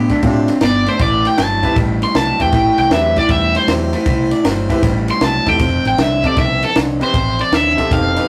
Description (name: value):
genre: electric blues shuffle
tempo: 156 BPM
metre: 4/4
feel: swing 66% on 8ths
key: A minor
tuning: A4 = 441 Hz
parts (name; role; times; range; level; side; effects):
- warm harmonica; second line; 0.0-0.5, 3.7-5.0 s; D4 to D5; -27 LUFS; equal; none
- electric guitar through a small old amp; riff; 0.0-8.3 s; F2 to C4; -20 LUFS; equal; none
- vintage muted fingered electric bass; bass; 0.0-8.2 s; F1 to A2; -23 LUFS; equal; none
- compact cocktail drum kit; drums; 0.1-8.2 s; kick drum, ride cymbal, snare drum; -22 LUFS; equal; none
- bright concert grand piano; accompaniment; 0.2-8.3 s; C4 to C5; -26 LUFS; equal; none
- overdriven electric guitar; melody; 0.6-8.3 s; A4 to C6; -18 LUFS; equal; none
room: wet studio reverb, RT60 0.5 s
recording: rough rehearsal-room recording, tube saturation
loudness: -15 LUFS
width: mono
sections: 0.0-8.3 A section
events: none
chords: 0.0 Dm7; 1.0 Am7; 5.6 F7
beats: 0.23 0.61 | 0.99 1.38 1.76 2.14 | 2.53 2.91 3.29 3.68 | 4.06 4.45 4.83 5.21 | 5.60 5.98 6.37 6.75 | 7.14 7.52 7.91